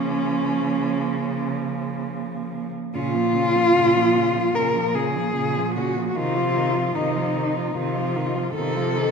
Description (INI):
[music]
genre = classical, lyrical piece for cello ensemble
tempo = 64-76 BPM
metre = 4/4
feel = rubato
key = Bb minor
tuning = A4 = 440 Hz
[part]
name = muted cello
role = melody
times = 0.0-9.1 s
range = Db4 to Bb4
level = -22 LUFS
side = left 2 dB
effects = none
[part]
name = muted cello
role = second line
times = 0.0-9.1 s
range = Bb3 to F4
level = -29 LUFS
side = right 10 dB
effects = none
[part]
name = muted cello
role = accompaniment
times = 0.0-9.1 s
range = Db3 to F3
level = -29 LUFS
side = right 2 dB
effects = none
[part]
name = muted cello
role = bass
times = 0.0-9.1 s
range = Bb2 to Db3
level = -28 LUFS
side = right 2 dB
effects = none
[sound]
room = wet concert hall reverb, RT60 2.2 s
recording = recorded in a church or concert hall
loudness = -20 LUFS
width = side -5 dB against mid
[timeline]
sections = 0.0-3.0 A section; 3.0-9.1 A section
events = none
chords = 0.0 Bbm/Db; 3.0 Bbm; 6.1 F7(no3)/C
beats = 0.26 1.17 2.08 | 2.95 3.76 4.55 5.35 | 6.14 6.94 7.74 8.54